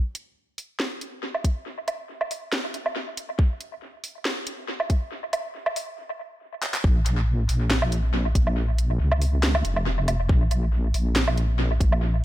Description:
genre	deep dubstep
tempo	139 BPM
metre	4/4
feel	swing 54% on 16ths, half-time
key	Bb minor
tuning	A4 = 436 Hz
part	garage drum kit	drums	0.1-12.0 s	handclaps, hi-hat, snare drum, woodblock	-28 LUFS	right 1 dB	overdrive, high-pass filter on hats, high-pass filter on snare, high-pass filter on perc, analog delay
part	electronic kick drum	drums	1.4-11.9 s	none	-20 LUFS	equal	overdrive
part	deep soft wobble bass	bass	6.8-12.2 s	F1 to Db2	-22 LUFS	equal	chorus
room	little or no reverb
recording	echo-heavy mix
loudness	-22 LUFS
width	side -15 dB against mid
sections	0.0-6.8 A section; 6.8-12.2 B section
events	build-up 0.0-6.8; drum fill 6.6; drop 6.8-12.2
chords	none

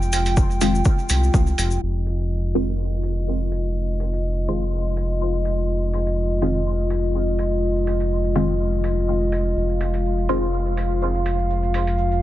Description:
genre	dub techno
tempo	124 BPM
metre	4/4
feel	swing 54% on 16ths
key	F minor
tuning	A4 = 440 Hz
part	dark analog pad	sustained chords	0.0-12.2 s	Ab3 to G5	-25 LUFS	left 1 dB	chorus, sidechain pumping
part	round analog bass	bass	0.0-12.2 s	F1 to C2	-22 LUFS	equal	sidechain pumping
part	cabasa	percussion	0.0-12.2 s	none	-31 LUFS	left 5 dB	none
part	electronic hi-hat	drums	0.1-12.0 s	none	-31 LUFS	right 3 dB	none
part	electronic kick drum	drums	0.4-1.4 s	none	-18 LUFS	equal	none
part	filtered dub chord stab	stabs	0.6-10.5 s	Eb3 to F4	-28 LUFS	left 1 dB	phaser, vintage 12-bit sampler grit, sidechain pumping, dub echo
room	light reverb, digital ambience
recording	low-pass filter, nothing above 10.9 kHz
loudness	-19 LUFS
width	side -14 dB against mid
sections	0.0-1.8 A section; 1.8-12.2 B section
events	filter sweep 1.8-12.2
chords	0.0 Fm; 1.8 Fm7

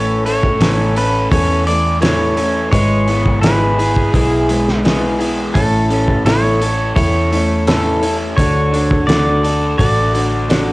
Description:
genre	folk rock and heartland rock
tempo	85 BPM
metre	4/4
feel	straight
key	A major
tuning	A4 = 440 Hz
part	pedal steel guitar	melody	0.0-10.7 s	G#4 to D5	-19 LUFS	equal	cassette tape
part	picked old ladder-braced acoustic guitar	accompaniment	0.0-10.7 s	A2 to A4	-20 LUFS	left 2 dB	cassette tape
part	raw garage guitar	riff	0.0-10.7 s	A2 to A4	-20 LUFS	right 1 dB	overdrive, cassette tape
part	vintage muted picked electric bass	bass	0.0-10.7 s	G#1 to E2	-18 LUFS	equal	transformer saturation
part	cloth-damped thuddy drum kit	drums	0.3-10.7 s	hi-hat, kick drum, snare drum	-18 LUFS	equal	none
room	light reverb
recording	home recording on cassette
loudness	-12 LUFS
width	side -21 dB against mid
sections	0.0-10.7 A section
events	none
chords	0.0 A; 2.7 E/G#; 5.6 A; 8.4 D

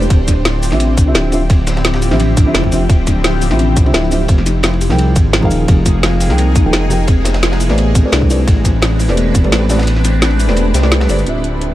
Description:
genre	liquid drum and bass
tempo	172 BPM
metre	4/4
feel	straight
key	unclear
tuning	A4 = 439 Hz
part	shimmering ambient pad	sustained chords	0.0-11.7 s	F3 to E5	-21 LUFS	left 1 dB	chorus, built-in reverb, phaser, sidechain pumping
part	harp-like synth pluck	arpeggios	0.0-11.7 s	B3 to G4	-23 LUFS	left 3 dB	chorus, cassette tape, dub echo
part	dark detuned saw bass	bass	0.0-11.7 s	D1 to C2	-14 LUFS	equal	none
part	drum and bass drum kit	drums	0.0-11.7 s	cabasa, hi-hat, snare drum	-18 LUFS	equal	none
part	crunchy breakbeat drum kit	drums	0.1-11.2 s	ride cymbal, snare drum	-27 LUFS	equal	high-pass filter on cymbals, high-pass filter on snare, high-pass filter on room
part	electronic kick drum	drums	0.1-9.4 s	none	-12 LUFS	equal	none
part	felt-muted upright piano	accompaniment	0.7-11.7 s	D3 to G5	-19 LUFS	right 1 dB	dub echo
room	digital ambience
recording	dark, warm production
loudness	-10 LUFS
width	side -14 dB against mid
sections	0.0-11.3 A section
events	drop 0.0-11.3; kick drops out 9.9-11.3; band accent 10.9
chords	0.1 Dm11; 4.3 Fm11; 7.6 Am11

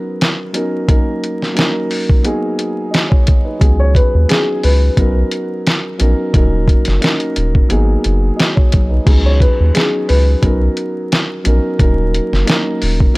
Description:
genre	hip hop, boom-bap hip-hop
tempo	88 BPM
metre	4/4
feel	swing 54% on 16ths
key	unclear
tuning	A4 = 441 Hz
part	dark grand piano	accompaniment	0.0-13.2 s	F#3 to D#5	-19 LUFS	equal	high-pass filter, low-pass filter
part	lo-fi sampler-style drum kit	drums	0.2-13.2 s	crash cymbal, hi-hat, kick drum, snare drum	-13 LUFS	equal	none
part	soft dub sub bass	bass	3.6-13.1 s	D#1 to D#2	-13 LUFS	equal	none
part	dark upright piano	melody	3.8-5.1, 9.3-10.6 s	G#4 to C#5	-19 LUFS	left 1 dB	high-pass filter, low-pass filter, tape echo
room	digital ambience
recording	dry, gritty hardware recording, vinyl crackle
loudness	-12 LUFS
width	side -23 dB against mid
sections	0.0-9.1 A section; 9.1-13.2 A section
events	break 0.0-3.6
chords	0.0 Bmaj7; 0.9 D#m7; 2.2 G#m7; 3.6 C#7sus4; 5.0 Bmaj7; 6.3 D#m7; 7.7 G#m7; 9.1 C#7sus4; 10.4 Bmaj7; 11.8 D#m7

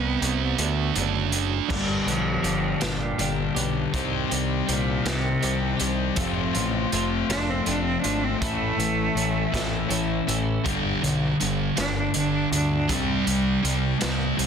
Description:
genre	quiet-loud alternative rock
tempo	54 BPM (dotted quarters)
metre	6/8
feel	straight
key	G mixolydian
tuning	A4 = 440 Hz
part	rich cello	melody	0.0-14.4 s	Bb2 to D4	-28 LUFS	right 3 dB	slapback echo
part	thick fuzz guitar	riff	0.0-1.7, 10.6-14.5 s	G2 to D4	-26 LUFS	right 10 dB	distortion
part	growling picked electric bass	bass	0.0-14.5 s	F1 to D2	-29 LUFS	left 1 dB	overdrive
part	raw garage drum kit	drums	0.2-14.5 s	crash cymbal, hi-hat, kick drum, snare drum	-29 LUFS	equal	none
part	twelve-string electric guitar	arpeggios	1.7-10.6 s	F2 to G4	-30 LUFS	right 8 dB	analog chorus
part	thick fuzz guitar	riff	1.7-14.5 s	G2 to C4	-27 LUFS	left 14 dB	distortion
room	light reverb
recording	dense, heavily limited modern master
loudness	-22 LUFS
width	side -7 dB against mid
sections	0.0-1.7 A section; 1.7-14.5 B section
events	half time 0.0-1.7; cello solo 1.7-14.5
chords	0.0 C5; 0.6 D; 1.7 G; 3.9 Cm; 6.2 F; 8.4 A; 10.7 G; 12.9 C5

